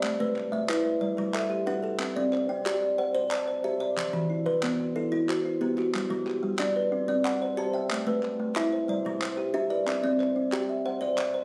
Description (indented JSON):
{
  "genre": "southern african traditional, mbira-style interlocking cycle",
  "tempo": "122 BPM (dotted quarters)",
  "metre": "12/8",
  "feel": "straight",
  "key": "G major",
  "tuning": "A4 = 440 Hz",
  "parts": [
    { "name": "kalimba", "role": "arpeggios", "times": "0.0-11.4 s", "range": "E3 to B5", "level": "-31 LUFS", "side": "equal", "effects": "none" },
    { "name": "kalimba", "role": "arpeggios", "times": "0.0-11.4 s", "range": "E3 to F#5", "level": "-32 LUFS", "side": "equal", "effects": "none" },
    { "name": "group handclap", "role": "percussion", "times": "0.0-11.3 s", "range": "none", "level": "-36 LUFS", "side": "equal", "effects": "none" }
  ],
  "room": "light reverb",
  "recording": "recorded on a phone in the room, studio reverb, compression",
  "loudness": "-28 LUFS",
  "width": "mono",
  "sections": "0.0-5.9 A section; 5.9-11.4 B section",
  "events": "none",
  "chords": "0.0 A5; 1.0 G; 2.0 C; 4.0 Em; 5.9 G; 6.9 C; 7.9 Am; 8.9 G; 9.9 C"
}